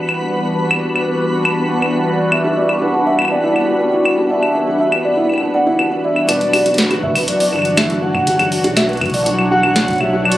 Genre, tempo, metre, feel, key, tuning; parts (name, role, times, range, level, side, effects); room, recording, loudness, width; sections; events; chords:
IDM; 121 BPM; 4/4; straight; E minor; A4 = 440 Hz
phased analog pad; sustained chords; 0.0-10.4 s; E3 to F#4; -19 LUFS; equal; phaser, chorus, vintage 12-bit sampler grit
twinkling granular texture; texture; 0.0-10.4 s; F#3 to F#6; -24 LUFS; left 1 dB; built-in reverb
booming analog drum machine; drums; 0.1-10.4 s; claves, hi-hat, snare drum; -18 LUFS; left 1 dB
warbly nostalgic lead; melody; 2.3-10.4 s; B4 to F#5; -19 LUFS; equal; chorus, dub echo
felt-muted upright piano; arpeggios; 2.4-10.2 s; D4 to E5; -19 LUFS; right 1 dB; tape echo
warm sub bass; bass; 6.3-10.4 s; E1 to B1; -24 LUFS; equal
electronic kick drum; drums; 7.0-10.0 s; -26 LUFS; equal
light reverb, digital ambience; recorded on a phone in the room, club reverb; -13 LUFS; side -14 dB against mid
0.0-6.3 A section; 6.3-10.4 B section
0.0 Em9